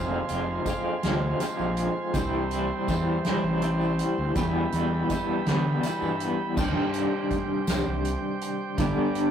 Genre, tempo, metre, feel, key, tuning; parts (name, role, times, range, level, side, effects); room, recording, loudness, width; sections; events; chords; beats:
psychedelic rock; 54 BPM (dotted quarters); 6/8; straight; A4 = 440 Hz
combo organ; sustained chords; 0.0-9.3 s; E4 to D6; -33 LUFS; right 4 dB
electric guitar through a small old amp; riff; 0.0-9.3 s; E2 to G4; -27 LUFS; left 1 dB; tremolo
fuzz fingered electric bass; bass; 0.0-9.2 s; F1 to D3; -29 LUFS; equal; overdrive
soft-mallet drum kit; drums; 0.3-9.3 s; crash cymbal, hi-hat, kick drum, snare drum; -32 LUFS; right 1 dB
tambourine; percussion; 0.3-9.0 s; -45 LUFS; left 3 dB
moderate studio reverb, RT60 0.6 s; rough rehearsal-room recording, tube saturation; -24 LUFS; side -8 dB against mid
0.0-6.6 A section; 6.6-9.3 B section
0.0 Fm; 2.1 C; 4.4 Em; 6.6 Cmadd9; 8.8 G
1.03 | 2.14 3.25 | 4.36 5.47 | 6.58 7.68 | 8.79